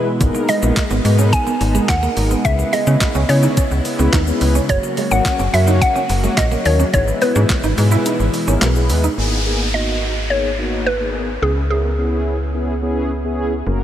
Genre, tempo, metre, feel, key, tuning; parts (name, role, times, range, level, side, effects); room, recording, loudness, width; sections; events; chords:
dance-pop; 107 BPM; 4/4; straight; G# minor; A4 = 439 Hz
mellow synth brass; accompaniment; 0.0-13.8 s; G#3 to C#5; -23 LUFS; left 1 dB; chorus, sidechain pumping
soft supersaw; sustained chords; 0.0-9.2 s; B2 to F#4; -23 LUFS; equal; sidechain pumping
slap-like FM bass; bass; 0.2-13.8 s; F#1 to C#3; -18 LUFS; equal; sidechain pumping
crisp 8-bit digital drum machine; drums; 0.2-9.2 s; handclaps, hi-hat, kick drum, shaker, snare drum; -21 LUFS; equal; overdrive
clean electric guitar; riff; 0.3-9.1 s; G#3 to E4; -25 LUFS; right 6 dB; lush chorus
mallet-like synth pluck; melody; 0.5-12.8 s; G#4 to G#5; -21 LUFS; equal; chorus, diffuse ambient delay
downlifter; sound effects; 9.2-13.7 s; -27 LUFS; equal
moderate huge ambient reverb, RT60 5.2 s; dreamy mix soaked in reverb; -14 LUFS; side -11 dB against mid
0.0-9.2 A section; 9.2-13.8 B section
break 0.0; kick muted 8.1-9.2
0.2 G#madd9; 2.5 C#m7; 4.7 F#; 6.9 E/G#; 9.2 G#madd9; 11.4 C#m7